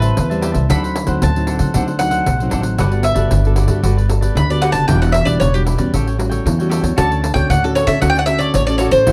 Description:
samba and choro; 115 BPM; 4/4; straight; A4 = 439 Hz
bowl-back mandolin; melody; 0.0-9.1 s; G4 to B5; -21 LUFS; equal; plate reverb
cavaquinho; accompaniment; 0.0-9.1 s; D4 to A5; -28 LUFS; equal
nylon-string guitar; accompaniment; 0.0-9.1 s; A2 to A4; -23 LUFS; equal
upright bass; bass; 0.0-9.1 s; E1 to D3; -20 LUFS; equal
pandeiro; percussion; 0.0-9.1 s; -25 LUFS; equal
moderate studio reverb, RT60 0.5 s; dark, warm production; -16 LUFS; mono
0.0-9.1 A section
mandolin solo 0.0-9.1
0.0 Am7; 0.7 D7b9; 2.8 Gmaj9; 4.9 Em9; 5.9 A6; 7.0 Dmaj7

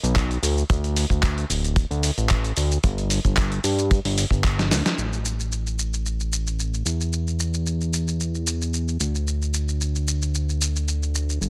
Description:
nu-disco, nu disco; 112 BPM; 4/4; swing 54% on 16ths; A4 = 440 Hz
fat analog bass; bass; 0.0-11.5 s; D1 to G2; -26 LUFS; equal; tube saturation
dusty soul sampler-style drum kit; drums; 0.0-11.5 s; handclaps, hi-hat, shaker, snare drum; -29 LUFS; equal
kick drum; drums; 0.2-4.6 s; -23 LUFS; equal
little or no reverb; -24 LUFS; mono
0.0-5.0 A section; 5.0-11.5 B section
drum fill 4.6-5.0; band accent 4.8

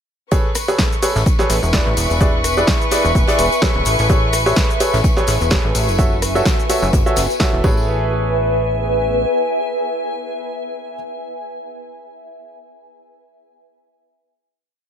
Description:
piano house; 127 BPM; 4/4; swing 55% on 16ths; A major; A4 = 439 Hz
dark studio violin section; sustained chords; 0.3-7.6 s; B4 to C#6; -23 LUFS; left 2 dB; sidechain pumping
clear baby grand piano; riff; 0.3-10.9 s; E4 to E5; -21 LUFS; right 1 dB; sidechain pumping, dub echo
electronic kick drum; drums; 0.3-7.7 s; -17 LUFS; equal
huge arena drum kit; drums; 0.3-7.5 s; hi-hat, snare drum; -31 LUFS; left 2 dB; sidechain pumping on hats, high-pass filter on hats, high-pass filter on snare, high-pass filter on room
punchy analog drum machine; drums; 0.3-7.5 s; cabasa, hi-hat, rim click, snare drum; -22 LUFS; equal
tambourine; percussion; 0.3-7.9 s; -32 LUFS; left 5 dB
granular cloud pad; texture; 1.1-11.3 s; B4 to G#5; -22 LUFS; equal; built-in reverb, sidechain pumping
plucky analog bass; bass; 1.2-9.3 s; D1 to A1; -20 LUFS; equal; sidechain pumping
light reverb, small room ambience; -14 LUFS; side -8 dB against mid
0.3-7.9 drop; 7.9-11.7 final note
drop 0.3-7.9
0.3 Amaj9; 2.0 E7; 3.9 Amaj9

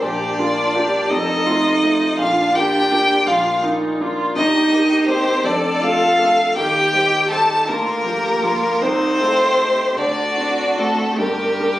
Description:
classical, slow romantic movement for piano quintet; 48-57 BPM (dotted quarters); 6/8; rubato; A4 = 440 Hz
clear violin; melody; 0.0-11.8 s; G4 to A5; -18 LUFS; left 1 dB
rich cello; second line; 0.0-11.8 s; G3 to A4; -24 LUFS; right 3 dB
rich violin; second line; 0.0-11.8 s; G3 to A4; -25 LUFS; equal
clear concert grand piano; accompaniment; 0.0-11.8 s; F1 to C5; -24 LUFS; left 1 dB
rich viola; accompaniment; 0.0-11.8 s; D4 to Bb4; -23 LUFS; right 2 dB
wet recital hall reverb, RT60 1.4 s; recorded on a phone in the room, studio reverb, compression; -15 LUFS; side -14 dB against mid
0.0-11.8 A section
0.0 Bb; 1.1 F7; 2.2 Bb; 4.4 Eb/G; 5.4 Dm/F; 6.6 Cm/Eb; 7.7 Bb/D; 8.8 Adim/C; 10.0 D7; 11.2 Gm

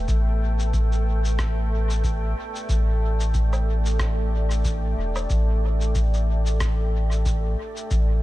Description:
ambient dub; 92 BPM; 4/4; swing 57% on 16ths; A4 = 440 Hz
deep dark ambient pad; sustained chords; 0.0-8.2 s; A3 to G5; -30 LUFS; equal; chorus, built-in reverb
soft dub sub bass; bass; 0.0-8.2 s; E1 to A1; -22 LUFS; equal
electronic kick drum; drums; 0.1-8.1 s; -27 LUFS; equal
electronic shaker, rim click and woodblock; drums; 0.1-8.1 s; -36 LUFS; equal; dub echo
digital ambience; -20 LUFS; side -16 dB against mid
0.1-8.2 A section
0.1 A7sus4

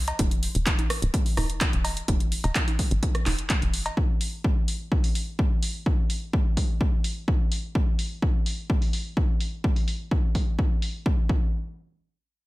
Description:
progressive house; 127 BPM; 4/4; straight; A4 = 440 Hz
tight sequencer bass; bass; 0.0-3.9 s; D1 to C2; -28 LUFS; equal; sidechain pumping
deep house drum kit; drums; 0.1-10.9 s; handclaps, hi-hat; -31 LUFS; right 1 dB; overdrive, low-pass filter on hats, studio reverb, low-pass filter on perc, low-pass filter on cymbals, low-pass filter on snare
electronic cowbell, congas and rim click; percussion; 0.1-3.9 s; -32 LUFS; right 2 dB; overdrive, sidechain pumping on perc, studio reverb, sidechain pumping on snare
electronic kick drum; drums; 0.2-11.4 s; -24 LUFS; equal; overdrive, studio reverb
little or no reverb; -23 LUFS; side -19 dB against mid
0.0-11.5 A section
filter sweep on analog synth bass 0.0-4.0

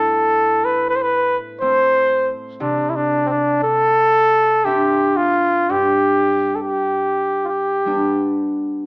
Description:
celtic folk, Celtic slow air; 52-62 BPM; 3/4; rubato; G mixolydian; A4 = 440 Hz
clear flugelhorn; melody; 0.0-8.4 s; C4 to C5; -15 LUFS; equal
concert harp; accompaniment; 0.0-8.9 s; G2 to E5; -24 LUFS; equal
moderate recital hall reverb, RT60 1.4 s; worn, warbling old tape, cassette tape, warbly pitch drift, small speaker sound; -15 LUFS; side -32 dB against mid
0.0-8.9 A section
0.0 Am; 2.6 Cadd9; 5.7 G

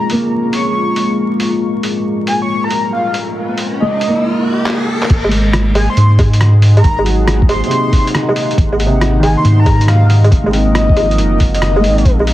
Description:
future garage; 138 BPM; 4/4; swing 67% on 16ths; A4 = 440 Hz
breathy flute-like synth lead; melody; 0.0-12.1 s; Eb5 to Db6; -20 LUFS; left 1 dB; analog chorus, analog delay
felt-muted upright piano; accompaniment; 0.0-12.3 s; C3 to Eb4; -19 LUFS; right 1 dB; sidechain pumping, tape echo
deep dark ambient pad; sustained chords; 0.0-12.3 s; Ab3 to Gb5; -19 LUFS; left 1 dB; chorus, built-in reverb, vintage 12-bit sampler grit, sidechain pumping
lo-fi sampler-style drum kit; drums; 0.1-12.3 s; crash cymbal, handclaps, hi-hat, rim click, woodblock; -19 LUFS; equal; overdrive
riser; sound effects; 2.5-5.1 s; -23 LUFS; left 2 dB
soft dub sub bass; bass; 5.1-12.3 s; Gb1 to Ab2; -11 LUFS; equal; tube saturation
electronic kick drum; drums; 5.1-12.2 s; -12 LUFS; equal; overdrive
wind-like tuned noise texture; texture; 12.2-12.3 s; F5; -36 LUFS; right 3 dB
little or no reverb; dense, heavily limited modern master, vinyl crackle, lossy compression artefacts; -10 LUFS; side -14 dB against mid
0.0-5.1 A section; 5.1-12.3 B section
filter sweep on ambient pad 0.0-5.1; riser 2.5-5.1; drum fill 4.7-5.1
0.0 Bbm9; 5.1 Ab9

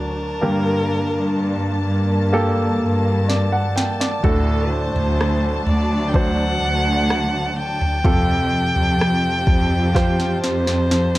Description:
pop ballad; 63 BPM; 4/4; straight; G harmonic minor; A4 = 440 Hz
rich violin; melody; 0.0-11.2 s; A4 to G5; -24 LUFS; left 1 dB
clear baby grand piano; accompaniment; 0.0-11.2 s; G2 to G5; -24 LUFS; equal
warm studio string section; sustained chords; 0.0-11.2 s; D3 to A5; -26 LUFS; equal
rich symphonic cello section; bass; 0.4-11.2 s; D2 to G2; -21 LUFS; equal
smooth R&B drum kit; drums; 3.3-11.2 s; kick drum, rim click, snare drum, toms; -21 LUFS; equal; overdrive
light reverb; dark, warm production; -17 LUFS; side -16 dB against mid
0.0-11.2 A section
drum fill 3.3-4.2, 10.0-11.2
0.4 Gmadd9; 4.2 D; 8.0 Fadd9

